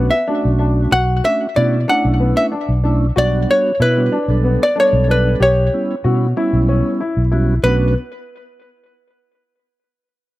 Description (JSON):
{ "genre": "progressive instrumental, progressive", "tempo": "188 BPM (eighths)", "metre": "7/8", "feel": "straight", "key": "B minor", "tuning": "A4 = 440 Hz", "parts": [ { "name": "archtop guitar, miked and amplified", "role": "melody", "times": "0.0-7.9 s", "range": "B4 to F#5", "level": "-17 LUFS", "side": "equal", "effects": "tape echo" }, { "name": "mellow tonewheel organ", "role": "accompaniment", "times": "0.0-7.9 s", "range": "G3 to A4", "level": "-21 LUFS", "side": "right 3 dB", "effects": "slow rotary speaker" }, { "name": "warm grand piano", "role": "arpeggios", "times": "0.0-7.9 s", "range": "B3 to G4", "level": "-23 LUFS", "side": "left 4 dB", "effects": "tape echo" }, { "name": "fretless electric bass", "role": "bass", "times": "0.0-7.9 s", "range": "B1 to B2", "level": "-16 LUFS", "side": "equal", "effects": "none" } ], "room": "light reverb", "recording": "none", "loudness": "-13 LUFS", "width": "side -17 dB against mid", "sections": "0.0-7.7 A section; 7.7-9.9 B section", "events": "none", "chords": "0.0 Bm7; 3.2 Em7/B (rootless); 5.4 Em69/B; 7.7 Bm7", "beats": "0.29 0.61 | 0.93 1.25 1.57 1.89 2.21 2.53 2.85 | 3.17 3.49 3.81 4.13 4.45 4.77 5.09 | 5.41 5.73 6.05 6.37 6.69 7.01 7.33 | 7.65" }